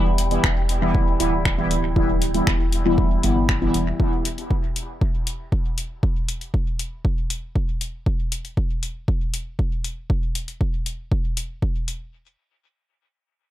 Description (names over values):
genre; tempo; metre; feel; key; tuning
dub techno; 118 BPM; 4/4; straight; E minor; A4 = 441 Hz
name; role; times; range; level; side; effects
resonant sweep polysynth; stabs; 0.0-3.8 s; E3 to E4; -22 LUFS; equal; chorus, phaser, sidechain pumping, dub echo
soft dub sub bass; bass; 0.0-3.9 s; D1 to G1; -24 LUFS; equal; sidechain pumping
wind-like tuned noise texture; texture; 0.0-4.0 s; G4; -35 LUFS; equal; built-in reverb, sidechain pumping
punchy analog drum machine; drums; 0.2-12.0 s; finger snaps, hi-hat; -28 LUFS; left 2 dB; dub echo
electronic kick drum; drums; 0.4-11.7 s; none; -22 LUFS; equal; none
room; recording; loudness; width
light reverb; echo-heavy mix; -20 LUFS; side -13 dB against mid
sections
0.0-12.1 A section; 12.1-13.5 B section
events
filter sweep on analog polysynth 0.0-4.0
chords
0.0 Em; 12.1 N.C.